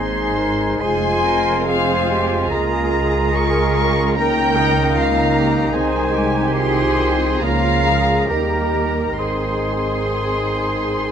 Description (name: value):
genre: classical, slow romantic movement for symphony orchestra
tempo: 63-78 BPM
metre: 4/4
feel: rubato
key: Ab major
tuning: A4 = 440 Hz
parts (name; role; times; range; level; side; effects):
- muted chamber violin section; melody; 0.0-11.1 s; Ab5 to Db6; -27 LUFS; left 1 dB; none
- bright clarinet; second line; 0.0-11.1 s; Eb4 to Ab4; -29 LUFS; left 1 dB; none
- hollow concert flute; second line; 0.0-11.1 s; Ab4 to Ab5; -26 LUFS; left 2 dB; none
- muted chamber violin section; second line; 0.0-11.1 s; Ab4 to Ab5; -25 LUFS; left 1 dB; none
- warm oboe; second line; 0.0-11.1 s; Ab5 to C6; -28 LUFS; right 1 dB; none
- muted chamber viola section; accompaniment; 0.0-11.1 s; G3 to F4; -26 LUFS; left 1 dB; none
- warm bassoon; accompaniment; 0.0-11.1 s; Db3 to Ab3; -26 LUFS; right 1 dB; none
- dark French horn section; sustained chords; 0.0-11.1 s; Eb3 to F4; -26 LUFS; left 5 dB; none
- mellow trumpet; stabs; 0.0-11.1 s; Ab4 to C5; -26 LUFS; right 1 dB; none
- muted symphonic double bass section; bass; 0.0-11.1 s; F1 to Eb2; -22 LUFS; right 3 dB; none
- muted chamber cello section; bass; 0.8-11.1 s; Eb4 to Bb4; -26 LUFS; right 4 dB; none
room: moderate recital hall reverb, RT60 1.6 s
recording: none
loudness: -16 LUFS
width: side -8 dB against mid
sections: 0.0-11.1 A section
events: none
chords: 0.0 Ab; 0.8 Fm; 2.5 Bbm7/Db; 4.2 Eb7/Db; 5.7 Ab/C; 7.4 Bbm/Db; 8.3 Eb; 9.2 Ab